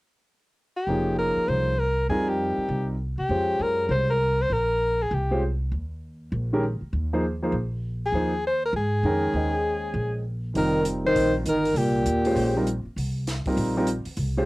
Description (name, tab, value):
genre	modal jazz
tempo	198 BPM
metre	4/4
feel	swing 62% on 8ths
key	F minor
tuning	A4 = 440 Hz
part	warm soprano saxophone	melody	0.8-5.4, 8.1-12.7 s	G4 to C5	-25 LUFS	left 1 dB	cassette tape
part	warm concert grand piano	accompaniment	0.9-14.5 s	Eb3 to G5	-26 LUFS	equal	cassette tape
part	upright bass	bass	0.9-14.5 s	F1 to C3	-28 LUFS	equal	none
part	breathy trombone	second line	10.6-12.7 s	Bb2 to Eb3	-24 LUFS	right 1 dB	cassette tape
part	compact cocktail drum kit	drums	10.6-14.3 s	hi-hat, kick drum, snare drum	-36 LUFS	right 1 dB	none
room	light reverb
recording	home recording on cassette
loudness	-22 LUFS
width	side -20 dB against mid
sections	0.9-10.6 A section; 10.6-14.5 B section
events	none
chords	0.0 N.C.; 0.9 F9sus4; 5.7 Eb9sus4; 10.6 F9sus4